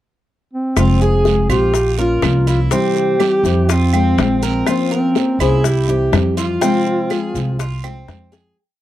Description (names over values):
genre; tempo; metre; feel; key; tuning
latin, Cuban son and guajira; 123 BPM; 4/4; straight; F harmonic minor; A4 = 440 Hz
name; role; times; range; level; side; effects
dark duduk; melody; 0.5-7.8 s; C4 to Ab4; -18 LUFS; equal; none
nylon-string guitar; accompaniment; 0.8-8.6 s; C3 to C5; -20 LUFS; left 5 dB; none
Cuban tres; arpeggios; 0.8-8.6 s; C4 to Bb4; -23 LUFS; right 4 dB; none
upright bass; bass; 0.8-8.5 s; F1 to F2; -17 LUFS; right 1 dB; none
bongos; percussion; 0.8-8.4 s; none; -22 LUFS; left 9 dB; none
claves; percussion; 0.8-8.1 s; none; -28 LUFS; right 23 dB; none
guiro; percussion; 0.8-8.6 s; none; -32 LUFS; right 17 dB; none
maracas; percussion; 0.8-8.6 s; none; -32 LUFS; left 20 dB; none
room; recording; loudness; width
light reverb; dry, close 1970s-style studio recording; -13 LUFS; side -13 dB against mid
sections
0.0-0.8 pickup bar; 0.8-8.6 A section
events
fade-out 6.6-8.6; drum fill 8.3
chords
0.0 N.C.; 0.8 Fm; 1.7 Bbm; 2.7 C; 3.7 Fm; 4.7 Bbmadd9; 5.6 C; 6.6 Fm